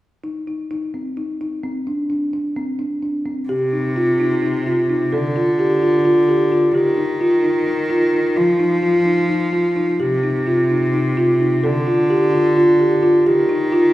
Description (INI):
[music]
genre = contemporary instrumental, chamber music in an uneven meter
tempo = 259 BPM (eighths)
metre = 7/8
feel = straight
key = C dorian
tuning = A4 = 439 Hz
[part]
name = folk marimba with soft mallets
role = arpeggios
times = 0.2-13.9 s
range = C4 to A4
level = -16 LUFS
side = equal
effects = none
[part]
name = clear cello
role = bass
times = 3.5-13.9 s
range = C3 to F3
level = -21 LUFS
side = equal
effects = none
[sound]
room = wet recital hall reverb, RT60 1.7 s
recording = heard from further back in the room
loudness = -15 LUFS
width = side -15 dB against mid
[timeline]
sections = 0.2-3.5 A section; 3.5-13.9 B section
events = none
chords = 0.2 Cm; 1.9 Csus2; 3.5 Cm; 5.1 Dm; 6.7 Eb; 8.4 Ebsus2/F; 10.0 Cm; 11.6 Dm; 13.3 Eb